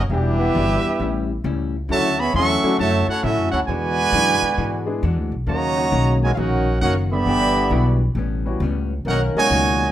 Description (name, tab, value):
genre	jazz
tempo	134 BPM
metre	4/4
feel	swing 65% on 8ths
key	unclear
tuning	A4 = 440 Hz
part	clear trumpet section	melody	0.0-9.9 s	C#4 to C#6	-20 LUFS	right 3 dB	none
part	warm trombone section	second line	0.0-9.9 s	A#2 to F#4	-25 LUFS	right 2 dB	plate reverb
part	upright bass	bass	0.0-9.9 s	E1 to A2	-22 LUFS	equal	none
part	vintage hollow-body jazz guitar	accompaniment	0.1-9.8 s	A2 to G4	-28 LUFS	left 6 dB	plate reverb
part	mellow trombone section	sustained chords	0.1-2.7, 5.8-9.8 s	D3 to A#4	-27 LUFS	left 1 dB	plate reverb
part	warm baby grand piano	accompaniment	0.4-5.0, 7.7-9.9 s	B2 to F#5	-27 LUFS	left 3 dB	plate reverb
room	wet studio ambience, RT60 0.5 s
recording	rough home demo mix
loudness	-17 LUFS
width	side -12 dB against mid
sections	0.0-9.9 A section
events	none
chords	0.1 Em9; 1.0 A7; 1.9 Dmaj9; 3.7 E9; 5.5 D#m7; 7.3 Em7; 8.2 A9; 9.1 Bmaj9